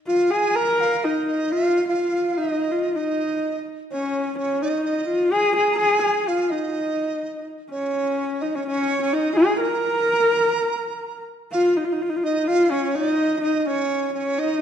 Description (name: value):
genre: mongolian traditional, Mongolian folk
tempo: 126 BPM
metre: 4/4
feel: straight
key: unclear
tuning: A4 = 440 Hz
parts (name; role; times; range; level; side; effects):
- warm horsehead fiddle; melody; 0.1-14.6 s; Db4 to Bb4; -20 LUFS; left 1 dB; none
- mellow dizi; second line; 0.1-14.6 s; Db5 to Bb5; -27 LUFS; right 5 dB; none
room: moderate recital hall reverb, RT60 1.6 s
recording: dark, warm production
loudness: -19 LUFS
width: side -9 dB against mid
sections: 0.0-11.5 A section; 11.5-14.6 B section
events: none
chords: none